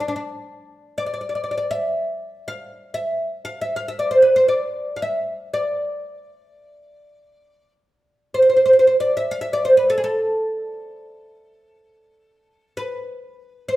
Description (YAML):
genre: turkish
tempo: free time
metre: none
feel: none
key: D makam nikriz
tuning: A4 = 440 Hz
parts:
  - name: oud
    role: solo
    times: 0.0-13.8 s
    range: D4 to F5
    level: -18 LUFS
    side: right 1 dB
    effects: none
room: wet large studio reverb, RT60 1.3 s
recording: band playing live in one room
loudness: -18 LUFS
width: side -16 dB against mid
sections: 0.5-13.8 A section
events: none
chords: none